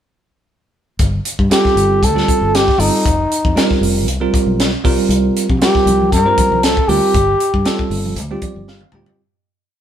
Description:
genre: electric jazz fusion.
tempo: 117 BPM.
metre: 4/4.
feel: swing 54% on 16ths.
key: G minor.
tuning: A4 = 440 Hz.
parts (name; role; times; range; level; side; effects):
fingered electric bass; bass; 1.0-9.0 s; F1 to C3; -20 LUFS; equal; none.
crisp fusion drum kit; drums; 1.0-9.2 s; hi-hat, kick drum, snare drum, toms; -17 LUFS; left 1 dB; none.
breathy trumpet; melody; 1.5-7.9 s; Eb4 to Bb4; -15 LUFS; equal; none.
bell-like tine electric piano; accompaniment; 1.5-9.2 s; G3 to G5; -18 LUFS; right 3 dB; fast stereo tremolo.
congas; percussion; 5.5-9.1 s; none; -26 LUFS; left 2 dB; none.
room: light reverb.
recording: band playing live in one room.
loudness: -12 LUFS.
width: side -10 dB against mid.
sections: 1.0-9.2 A section.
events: fade-out 7.1-9.2; tine electric piano fill 8.2-9.2; drum fill 8.7-9.2.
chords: 1.0 G9sus4; 3.1 F9sus4; 4.8 C7sus4; 7.1 G9sus4.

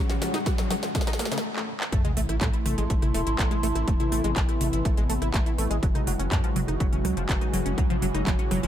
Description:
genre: melodic techno.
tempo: 123 BPM.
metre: 4/4.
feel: straight.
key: unclear.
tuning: A4 = 441 Hz.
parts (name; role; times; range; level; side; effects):
warm analog pad; sustained chords; 0.0-8.7 s; C3 to C#5; -34 LUFS; equal; chorus, sidechain pumping.
overtone-sweeping drone; drone; 0.1-8.7 s; A2 to E3; -40 LUFS; left 2 dB; none.
riser, swell and sub drop; sound effects; 0.0-3.9 s; none; -35 LUFS; left 1 dB; none.
warbly tape-like pad; texture; 0.0-8.7 s; C#4 to C6; -35 LUFS; equal; chorus, built-in reverb, sidechain pumping.
tight sequenced synth; arpeggios; 0.1-8.7 s; C#3 to F#4; -31 LUFS; equal; chorus, phaser, sidechain pumping, tape echo.
techno drum kit; drums; 0.1-8.7 s; handclaps, hi-hat, rim click, snare drum, toms; -32 LUFS; equal; overdrive, high-pass filter on snare, high-pass filter on hats, high-pass filter on toms.
electronic kick drum; drums; 0.5-8.4 s; none; -26 LUFS; equal; overdrive.
tight sequencer bass; bass; 1.9-8.7 s; E1 to A2; -28 LUFS; equal; sidechain pumping.
room: digital ambience.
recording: none.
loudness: -23 LUFS.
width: side -10 dB against mid.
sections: 0.0-1.9 A section; 1.9-8.7 B section.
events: build-up 0.0-1.9; drum fill 0.0-1.4, 1.6-1.9; riser 0.0-1.4; swell 0.9-1.9; stop 1.4-1.9; drop 1.9-8.7; impact 1.9-3.9.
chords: 0.0 F#sus2; 1.9 Am; 5.8 F#sus2.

